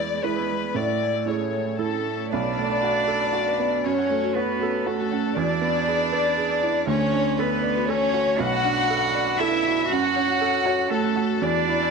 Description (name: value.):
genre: neoclassical piano and strings.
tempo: 118 BPM.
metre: 3/4.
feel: rubato.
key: F# minor.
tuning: A4 = 441 Hz.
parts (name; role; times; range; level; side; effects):
warm chamber violin section; melody; 0.0-11.9 s; A4 to F#5; -25 LUFS; left 7 dB; none.
warm cello; second line; 0.0-11.9 s; G#3 to F#4; -26 LUFS; right 10 dB; none.
felt-muted upright piano; accompaniment; 0.0-11.9 s; B1 to D5; -26 LUFS; right 9 dB; none.
Celtic harp; arpeggios; 0.0-11.9 s; A3 to A5; -30 LUFS; left 11 dB; none.
room: moderate plate reverb, RT60 2.9 s.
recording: 1960s-style stereo with parts hard left and right.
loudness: -20 LUFS.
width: side -5 dB against mid.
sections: 0.0-2.3 A section; 2.3-11.9 B section.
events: none.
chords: 0.0 E7; 0.7 Amaj7; 2.3 Bm7; 3.8 F#m; 5.4 E7; 6.9 Dmaj7; 8.4 Bm7; 9.9 F#m.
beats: 0.23 | 0.75 1.26 1.78 | 2.31 2.83 3.33 | 3.84 4.35 4.86 | 5.37 5.88 6.38 | 6.88 7.38 7.88 | 8.39 8.89 9.39 | 9.90 10.40 10.91 | 11.43.